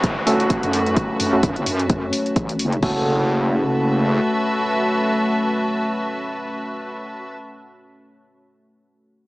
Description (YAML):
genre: bass house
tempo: 129 BPM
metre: 4/4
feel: swing 56% on 16ths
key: F# minor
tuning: A4 = 439 Hz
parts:
  - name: deep dark ambient pad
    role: sustained chords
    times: 0.2-7.3 s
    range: A3 to C#5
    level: -24 LUFS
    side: left 1 dB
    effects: chorus, built-in reverb, sidechain pumping
  - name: electronic kick drum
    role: drums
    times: 0.0-2.9 s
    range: none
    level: -21 LUFS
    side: equal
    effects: none
  - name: house drum kit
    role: drums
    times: 0.0-2.9 s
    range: crash cymbal, hi-hat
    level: -28 LUFS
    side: left 1 dB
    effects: none
  - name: downlifter and impact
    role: sound effects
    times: 0.0-7.8 s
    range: none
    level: -30 LUFS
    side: equal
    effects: none
  - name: rich chamber string section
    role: texture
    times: 0.0-7.3 s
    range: F#4 to A5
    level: -25 LUFS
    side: equal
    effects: sidechain pumping
  - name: percussive organ stab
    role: stabs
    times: 0.3-7.7 s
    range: A3 to A4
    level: -23 LUFS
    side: right 1 dB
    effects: chorus, sidechain pumping, tape echo
  - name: wobble bass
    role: bass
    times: 0.6-4.2 s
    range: F#1 to F#2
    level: -23 LUFS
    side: equal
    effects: chorus, overdrive, sidechain pumping
room: moderate lush hall reverb, RT60 2.6 s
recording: small speaker sound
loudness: -18 LUFS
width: side -20 dB against mid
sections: 0.0-2.8 A section; 2.8-6.5 B section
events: fade-out on string section 0.0-2.8; filter sweep on wobble bass 0.0-2.8; filter sweep on synth stab 0.0-2.8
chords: 0.0 F#m